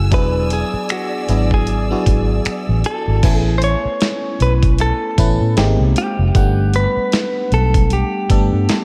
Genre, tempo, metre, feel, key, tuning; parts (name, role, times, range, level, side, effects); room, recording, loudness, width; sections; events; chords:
contemporary R&B; 77 BPM; 4/4; swing 58% on 16ths; A major; A4 = 444 Hz
FM electric piano; accompaniment; 0.0-8.8 s; F#3 to G#5; -24 LUFS; equal; chorus, phaser
warm studio string section; sustained chords; 0.0-3.2 s; D5 to E6; -31 LUFS; equal; sidechain pumping
vintage muted fingered electric bass; bass; 0.0-8.7 s; E1 to A2; -19 LUFS; equal
direct-recorded clean electric guitar; melody; 0.1-8.8 s; F#4 to C#5; -24 LUFS; equal; spring reverb, tape echo
dusty soul sampler-style drum kit; drums; 0.1-8.8 s; crash cymbal, finger snaps, hi-hat, kick drum, snare drum; -20 LUFS; equal
light reverb; -16 LUFS; mono
0.0-3.2 A section; 3.2-8.8 B section
0.1 E7; 3.2 Amaj7; 5.6 G#maj7; 6.3 Gmaj7